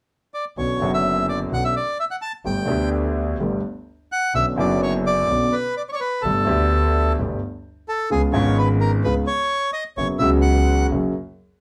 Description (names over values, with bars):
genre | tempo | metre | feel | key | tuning
tango | 128 BPM | 4/4 | rubato | B minor | A4 = 442 Hz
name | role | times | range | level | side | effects
bandoneon | melody | 0.3-10.9 s | G#4 to A5 | -25 LUFS | equal | none
warm grand piano | accompaniment | 0.6-11.1 s | F#1 to G4 | -24 LUFS | equal | none
clear double bass | bass | 0.6-11.1 s | F#1 to D2 | -26 LUFS | equal | none
room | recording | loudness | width
moderate studio ambience, RT60 0.5 s | band playing live in one room | -21 LUFS | mono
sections
0.6-4.3 A section; 4.3-11.6 B section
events
none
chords
0.0 N.C.; 0.6 Bmadd9; 2.5 Gadd9; 4.3 Bmadd9; 6.2 Gadd9; 8.1 C#7; 10.0 F#sus4; 10.9 F#